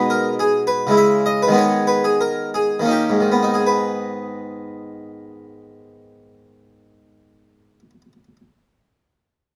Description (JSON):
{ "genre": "classical, baroque-style suite movement for harpsichord", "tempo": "76-108 BPM", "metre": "3/4", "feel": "rubato", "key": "G# minor", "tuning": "A4 = 440 Hz", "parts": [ { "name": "harpsichord", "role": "solo", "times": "0.0-8.4 s", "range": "G#2 to E5", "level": "-19 LUFS", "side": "equal", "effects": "none" } ], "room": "light reverb", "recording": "close, detailed microphones", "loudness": "-18 LUFS", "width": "mono", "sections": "0.0-3.7 A section; 3.7-8.3 B section", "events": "slowing down 0.0-3.7", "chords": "0.0 G#m/B; 0.9 C#m; 1.5 G#m/D#; 2.9 D#7; 3.7 G#m" }